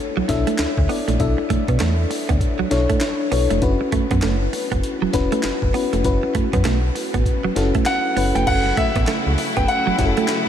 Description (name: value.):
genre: R&B, new jack swing.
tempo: 99 BPM.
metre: 4/4.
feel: swing 61% on 16ths.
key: unclear.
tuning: A4 = 440 Hz.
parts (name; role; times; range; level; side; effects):
FM electric piano with soft pad layer; accompaniment; 0.0-10.5 s; C#4 to E5; -23 LUFS; left 4 dB; chorus, tremolo.
direct-recorded clean electric guitar; riff; 0.2-10.3 s; F#3 to B3; -25 LUFS; right 8 dB; wide subtle chorus.
slap-like FM bass; bass; 0.2-10.1 s; E1 to B2; -21 LUFS; equal; none.
breakbeat sampler-style drum kit; drums; 0.3-10.5 s; crash cymbal, handclaps, hi-hat, kick drum, snare drum; -24 LUFS; equal; none.
clear grand piano; melody; 7.9-10.5 s; E5 to G5; -21 LUFS; equal; analog delay.
bright studio string section; sustained chords; 8.5-10.5 s; C#3 to E4; -25 LUFS; left 2 dB; none.
room: moderate huge ambient reverb, RT60 8.4 s.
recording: dreamy mix soaked in reverb.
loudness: -17 LUFS.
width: side -9 dB against mid.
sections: 0.0-8.5 A section; 8.5-10.5 B section.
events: none.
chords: 0.0 Bm11; 3.6 F#7sus4; 8.5 F#m7.